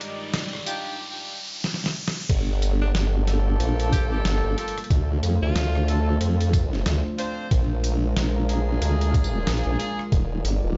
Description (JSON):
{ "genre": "glitch hop", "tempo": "92 BPM", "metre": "4/4", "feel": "swing 60% on 16ths", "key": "G minor", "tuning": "A4 = 440 Hz", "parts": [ { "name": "dark analog pad", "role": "sustained chords", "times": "0.0-10.8 s", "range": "G3 to D5", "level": "-35 LUFS", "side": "equal", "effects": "chorus, vintage 12-bit sampler grit, sidechain pumping" }, { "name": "boom bap sampler-style drum kit", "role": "drums", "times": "0.0-10.6 s", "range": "crash cymbal, hi-hat, rim click, snare drum, tambourine", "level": "-32 LUFS", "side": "equal", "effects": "none" }, { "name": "riser", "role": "sound effects", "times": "0.0-2.3 s", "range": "none", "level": "-35 LUFS", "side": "equal", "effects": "none" }, { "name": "warm horn section", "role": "stabs", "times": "0.7-10.0 s", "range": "Bb3 to C5", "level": "-35 LUFS", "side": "equal", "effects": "sidechain pumping, tape echo" }, { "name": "formant-sweep wobble bass", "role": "bass", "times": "2.3-10.8 s", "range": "Eb1 to F2", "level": "-25 LUFS", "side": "equal", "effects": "chorus, tube saturation" }, { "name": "electronic kick drum", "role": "drums", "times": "2.3-10.3 s", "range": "none", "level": "-24 LUFS", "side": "equal", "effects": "none" }, { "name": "bright tenor saxophone", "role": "melody", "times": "2.8-6.1 s", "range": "D4 to G4", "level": "-38 LUFS", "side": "equal", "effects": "tape echo" } ], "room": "light reverb", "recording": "played on a big sound system in a bare room, stone room reverb, nothing above 7.7 kHz", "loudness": "-24 LUFS", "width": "mono", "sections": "0.0-2.3 A section; 2.3-10.8 B section", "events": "build-up 0.0-2.3; riser 0.0-2.3; drum fill 1.6-2.3; drop 2.3-10.8", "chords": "0.0 Ebmaj9; 2.3 Gm9; 4.9 Dm7; 7.5 Bb7; 10.1 Ebmaj9", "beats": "0.34 0.99 1.64 | 2.29 2.95 3.60 4.25 | 4.90 5.56 6.21 6.86 | 7.51 8.16 8.82 9.47 | 10.12" }